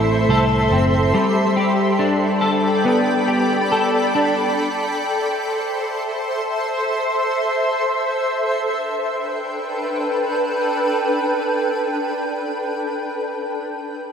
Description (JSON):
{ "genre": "dream pop", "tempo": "60-71 BPM", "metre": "4/4", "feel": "straight", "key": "G major", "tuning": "A4 = 440 Hz", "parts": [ { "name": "shimmering ambient pad", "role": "sustained chords", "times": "0.0-13.1 s", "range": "D4 to C6", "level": "-20 LUFS", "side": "equal", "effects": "chorus, built-in reverb" }, { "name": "electric guitar at the edge of break-up", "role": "arpeggios", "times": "0.0-5.2 s", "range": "A2 to A4", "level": "-18 LUFS", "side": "left 1 dB", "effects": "ensemble chorus, digital delay" }, { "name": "vintage muted picked electric bass", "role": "bass", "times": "0.0-1.1 s", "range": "F#1 to C2", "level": "-20 LUFS", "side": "right 1 dB", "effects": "none" } ], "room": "wet plate reverb, RT60 2.0 s", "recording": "bright 1980s-style digital production", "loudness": "-17 LUFS", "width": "side -7 dB against mid", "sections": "0.0-8.3 A section; 8.3-12.3 B section", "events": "slowing down 1.1-8.3", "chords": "0.0 Am; 1.1 Gadd9; 4.6 Am; 8.3 Gadd9" }